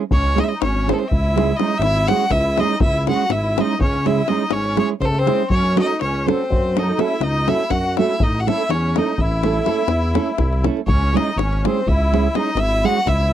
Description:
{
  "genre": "balkan folk, Balkan wedding band",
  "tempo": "245 BPM (eighths)",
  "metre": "11/8",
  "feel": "straight",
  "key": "C# harmonic minor",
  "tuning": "A4 = 440 Hz",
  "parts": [
    { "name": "nylon-string guitar", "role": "accompaniment", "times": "0.0-13.0 s", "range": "G#3 to A4", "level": "-20 LUFS", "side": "right 8 dB", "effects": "none" },
    { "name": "clear violin", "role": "melody", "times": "0.1-13.3 s", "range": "A4 to F#5", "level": "-22 LUFS", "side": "equal", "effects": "none" },
    { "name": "musette accordion", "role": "second line", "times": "0.1-13.3 s", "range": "A3 to F#4", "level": "-27 LUFS", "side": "left 3 dB", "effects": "none" },
    { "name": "smooth synth bass", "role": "bass", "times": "0.1-13.3 s", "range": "G#1 to F#2", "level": "-20 LUFS", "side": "equal", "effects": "none" },
    { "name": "davul", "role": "percussion", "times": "0.1-13.3 s", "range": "none", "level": "-22 LUFS", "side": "left 3 dB", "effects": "none" }
  ],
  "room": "little or no reverb",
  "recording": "dry, close 1970s-style studio recording",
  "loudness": "-16 LUFS",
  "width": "side -11 dB against mid",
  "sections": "0.1-13.3 A section",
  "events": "none",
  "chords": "0.1 C#m; 5.5 F#m; 8.2 A; 10.9 C#m",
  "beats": "| 0.12 0.36 0.61 0.85 1.10 1.34 1.58 1.83 2.08 2.32 2.56 | 2.81 3.05 3.30 3.54 3.79 4.03 4.28 4.52 4.77 5.01 5.26 | 5.50 5.75 5.99 6.23 6.48 6.72 6.97 7.21 7.46 7.70 7.95 | 8.19 8.43 8.68 8.92 9.17 9.41 9.65 9.90 10.14 10.39 10.63 | 10.87 11.12 11.36 11.60 11.85 12.09 12.34 12.58 12.82 13.06 13.31"
}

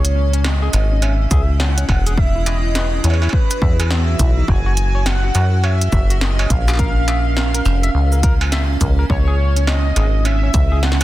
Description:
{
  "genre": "IDM",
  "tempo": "104 BPM",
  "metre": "4/4",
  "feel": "swing 62% on 16ths",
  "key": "unclear",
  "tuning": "A4 = 443 Hz",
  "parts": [
    { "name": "warm velvety synth lead", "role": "melody", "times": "0.0-11.0 s", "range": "B4 to G#5", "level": "-25 LUFS", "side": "right 1 dB", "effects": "chorus, tape echo" },
    { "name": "icy glass pad", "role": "sustained chords", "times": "0.0-11.0 s", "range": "A#2 to C#5", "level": "-27 LUFS", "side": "right 4 dB", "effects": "chorus, built-in reverb" },
    { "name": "deep acid bass", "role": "bass", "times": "0.0-11.0 s", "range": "E1 to F#2", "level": "-16 LUFS", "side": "equal", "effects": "none" },
    { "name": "industrial drum kit", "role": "drums", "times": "0.0-11.0 s", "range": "hi-hat, shaker, snare drum, struck metal", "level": "-23 LUFS", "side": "right 1 dB", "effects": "none" },
    { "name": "overdriven tine electric piano", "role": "arpeggios", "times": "0.2-11.0 s", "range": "B3 to E5", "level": "-29 LUFS", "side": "left 3 dB", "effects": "vintage 12-bit sampler grit, tape echo" },
    { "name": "electronic kick drum", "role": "drums", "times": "1.3-10.7 s", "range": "none", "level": "-17 LUFS", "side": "equal", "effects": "none" }
  ],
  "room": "little or no reverb",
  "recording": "dense, heavily limited modern master",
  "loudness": "-14 LUFS",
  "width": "side -16 dB against mid",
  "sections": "0.0-11.0 A section",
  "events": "none",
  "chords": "0.0 C#madd9; 2.2 Eadd9; 4.5 F#; 6.8 A#m; 9.1 C#madd9",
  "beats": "0.44 1.02 1.60 | 2.17 2.75 3.33 3.90 | 4.48 5.06 5.64 6.21 | 6.79 7.37 7.94 8.52 | 9.10 9.68 10.25 10.83"
}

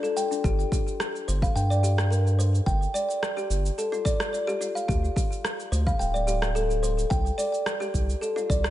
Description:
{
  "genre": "organic downtempo",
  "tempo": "108 BPM",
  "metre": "4/4",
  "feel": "straight",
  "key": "G minor",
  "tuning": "A4 = 439 Hz",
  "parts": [
    { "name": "kalimba", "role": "arpeggios", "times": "0.0-8.7 s", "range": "D4 to G5", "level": "-28 LUFS", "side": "left 1 dB", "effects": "ping-pong delay" },
    { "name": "electronic cabasa and rim click", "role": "drums", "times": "0.0-8.7 s", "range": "none", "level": "-33 LUFS", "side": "right 1 dB", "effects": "none" },
    { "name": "round analog bass", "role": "bass", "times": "0.4-8.7 s", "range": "D1 to G2", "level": "-24 LUFS", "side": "equal", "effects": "sidechain pumping" },
    { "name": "electronic kick drum", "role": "drums", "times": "0.4-8.6 s", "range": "none", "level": "-26 LUFS", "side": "equal", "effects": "none" }
  ],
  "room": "digital ambience",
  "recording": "nothing above 10.7 kHz",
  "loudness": "-23 LUFS",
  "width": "side -14 dB against mid",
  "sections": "0.0-8.7 A section",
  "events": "none",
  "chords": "0.4 G5; 4.9 D5; 7.1 C5",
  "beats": "| 0.44 1.00 1.55 2.11 | 2.67 3.22 3.78 4.33 | 4.89 5.44 6.00 6.55 | 7.11 7.67 8.22"
}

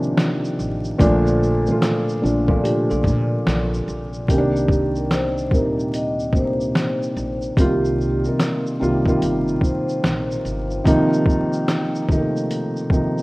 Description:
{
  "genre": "lo-fi hip hop",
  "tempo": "73 BPM",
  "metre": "4/4",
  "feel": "swing 64% on 16ths",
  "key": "C dorian",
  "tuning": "A4 = 440 Hz",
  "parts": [
    { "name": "felt-muted upright piano", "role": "accompaniment", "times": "0.0-13.2 s", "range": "Bb2 to F4", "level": "-20 LUFS", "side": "equal", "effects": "cassette tape" },
    { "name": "upright bass", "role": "bass", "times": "0.0-10.8 s", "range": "G1 to Bb2", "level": "-26 LUFS", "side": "equal", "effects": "none" },
    { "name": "trip hop sampler-style drum kit", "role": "drums", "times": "0.0-13.2 s", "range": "hi-hat, kick drum, shaker, snare drum", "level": "-21 LUFS", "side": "equal", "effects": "vintage 12-bit sampler grit" },
    { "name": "mellow tine electric piano", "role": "second line", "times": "2.5-4.1 s", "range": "D4 to A4", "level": "-29 LUFS", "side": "right 1 dB", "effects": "medium stereo tremolo, tape echo" },
    { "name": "vibraphone with soft mallets", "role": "melody", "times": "4.3-10.8 s", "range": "G4 to Eb5", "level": "-26 LUFS", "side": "equal", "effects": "none" }
  ],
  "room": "light reverb, small room ambience",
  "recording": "rough home demo mix, vinyl crackle",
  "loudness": "-17 LUFS",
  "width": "side -22 dB against mid",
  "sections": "0.0-13.2 A section",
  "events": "none",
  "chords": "0.0 F7sus4; 1.0 Bbmaj7; 4.3 Cm9; 10.9 F7sus4",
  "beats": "0.17 | 0.99 1.81 2.63 3.46 | 4.28 5.10 5.92 6.75 | 7.57 8.39 9.21 10.03 | 10.85 11.68 12.50"
}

